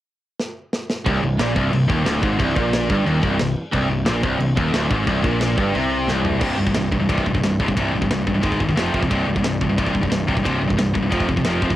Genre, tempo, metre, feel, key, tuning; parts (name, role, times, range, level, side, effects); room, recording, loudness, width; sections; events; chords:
heavy metal; 179 BPM; 4/4; straight; C minor; A4 = 440 Hz
tight metal drum kit; drums; 0.4-11.8 s; crash cymbal, kick drum, ride cymbal, snare drum, toms; -24 LUFS; equal; cassette tape
tight distorted guitar; riff; 1.0-11.8 s; C2 to Ab3; -26 LUFS; right 8 dB; distortion, cassette tape
overdriven electric guitar; riff; 1.1-6.4 s; C2 to C3; -25 LUFS; right 1 dB; cassette tape
scooped high-gain guitar; riff; 1.1-11.8 s; C2 to Ab3; -21 LUFS; left 3 dB; distortion, cassette tape
fuzz picked electric bass; bass; 1.1-11.8 s; C1 to C2; -25 LUFS; equal; overdrive
little or no reverb; home recording on cassette; -17 LUFS; side -14 dB against mid
0.0-1.1 A section; 1.1-6.4 B section; 6.4-11.8 C section
drum fill 0.4-1.1, 6.1-6.4
0.0 N.C.; 1.1 Cm; 6.4 C5; 8.4 Ab5; 8.8 F5; 9.1 C5; 11.1 F5